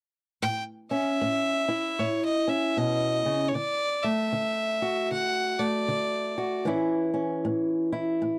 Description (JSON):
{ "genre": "acoustic country blues, solo or duo", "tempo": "77 BPM", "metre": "4/4", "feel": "swing 61% on 8ths", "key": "A major", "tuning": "A4 = 440 Hz", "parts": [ { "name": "bright fiddle", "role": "melody", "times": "0.4-6.7 s", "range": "C#5 to G5", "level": "-30 LUFS", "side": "equal", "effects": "none" }, { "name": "fingerpicked old ladder-braced acoustic guitar", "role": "accompaniment", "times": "0.4-8.4 s", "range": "A2 to F#4", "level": "-30 LUFS", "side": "equal", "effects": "none" } ], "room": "little or no reverb", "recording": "dry, close 1970s-style studio recording", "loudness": "-27 LUFS", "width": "mono", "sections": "0.4-8.4 A section", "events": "none", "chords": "0.4 A; 3.6 D; 6.7 A" }